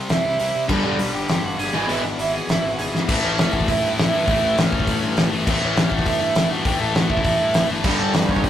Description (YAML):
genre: punk rock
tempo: 202 BPM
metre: 4/4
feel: straight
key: A mixolydian from 3.1 s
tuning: A4 = 440 Hz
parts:
  - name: distorted electric guitar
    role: riff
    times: 0.0-8.5 s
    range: E2 to C4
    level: -26 LUFS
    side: left 1 dB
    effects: overdrive
  - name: lead guitar through a small cranked amp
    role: melody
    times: 0.1-8.5 s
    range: C#4 to C#6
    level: -24 LUFS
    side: right 3 dB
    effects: overdrive
  - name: fuzz picked electric bass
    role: bass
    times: 0.1-8.5 s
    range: E1 to C3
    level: -30 LUFS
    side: left 1 dB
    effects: overdrive
  - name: loose indie drum kit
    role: drums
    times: 0.1-8.5 s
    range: crash cymbal, hi-hat, kick drum, snare drum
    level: -22 LUFS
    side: equal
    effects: none
  - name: distorted electric guitar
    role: riff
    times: 0.7-8.5 s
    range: E2 to A3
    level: -24 LUFS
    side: left 5 dB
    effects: overdrive
  - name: raw garage guitar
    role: riff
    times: 0.7-2.0, 7.8-8.5 s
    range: E2 to G3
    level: -23 LUFS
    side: right 3 dB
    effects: overdrive
room: moderate studio ambience, RT60 0.5 s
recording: rough rehearsal-room recording, tube saturation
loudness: -18 LUFS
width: side -10 dB against mid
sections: 0.0-3.1 A section; 3.1-8.5 B section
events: half time 0.0-3.1; drum fill 2.9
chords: 0.0 C; 0.7 G5; 1.7 E/G#; 3.1 A; 7.8 G